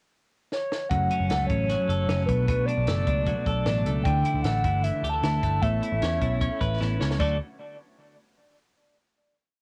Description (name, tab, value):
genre	jangly indie pop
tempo	153 BPM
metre	4/4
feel	straight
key	D major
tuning	A4 = 439 Hz
part	hollow clarinet-like synth lead	melody	0.5-7.4 s	B4 to A5	-31 LUFS	equal	chorus, cassette tape
part	compact cocktail drum kit	drums	0.5-7.3 s	crash cymbal, hi-hat, kick drum, snare drum	-34 LUFS	equal	cassette tape
part	mellow electric guitar	accompaniment	0.9-7.4 s	F#2 to D5	-36 LUFS	equal	spring reverb, cassette tape
part	twelve-string electric guitar	arpeggios	0.9-7.4 s	F#2 to B4	-32 LUFS	equal	tremolo, cassette tape
part	vintage muted picked electric bass	bass	0.9-7.4 s	F#1 to E2	-29 LUFS	equal	none
room	light reverb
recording	home recording on cassette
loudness	-25 LUFS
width	mono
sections	0.0-0.9 pickup bar; 0.9-7.2 verse; 7.2-8.8 final chord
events	drum fill 0.5-0.9, 6.8-7.2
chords	0.0 N.C.; 0.9 F#m; 2.3 Bm7; 4.1 Dsus2; 5.6 Aadd9; 7.2 D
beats	0.12 0.52 | 0.91 1.30 1.69 2.08 | 2.48 2.87 3.26 3.66 | 4.05 4.44 4.84 5.23 | 5.62 6.02 6.41 6.81 | 7.20